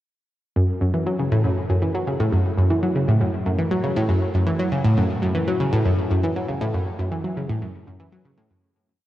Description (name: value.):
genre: ambient.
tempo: 119 BPM.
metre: 4/4.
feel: straight.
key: F# minor.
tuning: A4 = 440 Hz.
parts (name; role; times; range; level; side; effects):
analog pluck; solo; 0.6-8.6 s; F#2 to F#3; -19 LUFS; equal; chorus, phaser, cassette tape, ping-pong delay.
room: wet lush hall reverb, RT60 3.0 s.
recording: home recording on cassette, nothing above 10.5 kHz.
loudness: -19 LUFS.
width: side -14 dB against mid.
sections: 0.6-8.6 A section.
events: fade-out 5.9-8.6.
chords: none.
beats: | 0.56 1.06 1.57 2.07 | 2.58 3.08 3.58 4.09 | 4.59 5.10 5.60 6.11 | 6.61 7.11 7.62 8.12.